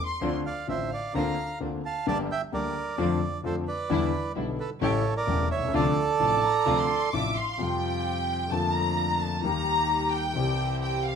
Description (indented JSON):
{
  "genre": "tango",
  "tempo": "130 BPM",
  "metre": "4/4",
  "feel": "rubato",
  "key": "D minor, F major from 7.6 s",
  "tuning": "A4 = 441 Hz",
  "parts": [
    { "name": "warm symphonic violin section", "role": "second line", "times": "0.0-0.3, 6.2-11.2 s", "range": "E5 to D6", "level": "-28 LUFS", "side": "left 1 dB", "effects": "none" },
    { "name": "warm concert grand piano", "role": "accompaniment", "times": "0.2-11.2 s", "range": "E1 to G4", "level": "-28 LUFS", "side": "left 3 dB", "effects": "none" },
    { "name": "warm chamber string section", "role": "stabs", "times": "0.2-11.2 s", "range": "D3 to G4", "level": "-36 LUFS", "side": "right 3 dB", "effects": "none" },
    { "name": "bandoneon", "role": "melody", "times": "0.5-7.1 s", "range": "A4 to Bb5", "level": "-27 LUFS", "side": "right 6 dB", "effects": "none" }
  ],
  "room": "moderate large studio reverb, RT60 1.1 s",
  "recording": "minimal, uncompressed stereo recording",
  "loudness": "-24 LUFS",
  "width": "side -7 dB against mid",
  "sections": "0.0-7.6 A section; 7.6-11.2 B section",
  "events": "violin section solo 7.6-11.2",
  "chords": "0.2 Dm7; 1.1 Bbadd9/D; 2.1 Gm; 3.0 Dm7/F; 3.9 Em7; 4.8 A7; 5.7 Dm7; 7.6 Fsus2; 8.5 Bbmaj7/F; 9.4 Eb; 10.4 C"
}